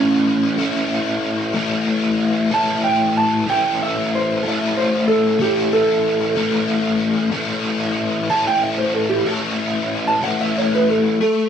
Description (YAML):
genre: rock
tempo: 62 BPM (dotted quarters)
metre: 6/8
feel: straight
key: A mixolydian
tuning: A4 = 440 Hz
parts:
  - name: vintage hollow-body jazz guitar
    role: melody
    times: 0.0-11.5 s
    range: C#4 to A5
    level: -19 LUFS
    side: right 2 dB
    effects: none
  - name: overdriven electric guitar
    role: riff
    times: 0.0-11.5 s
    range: A2 to A4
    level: -19 LUFS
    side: left 3 dB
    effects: rotary speaker
room: moderate studio reverb, RT60 0.7 s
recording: band playing live in one room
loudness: -16 LUFS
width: side -8 dB against mid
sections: 0.0-11.2 A section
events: hollow-body jazz guitar solo 0.0-11.2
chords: 0.0 A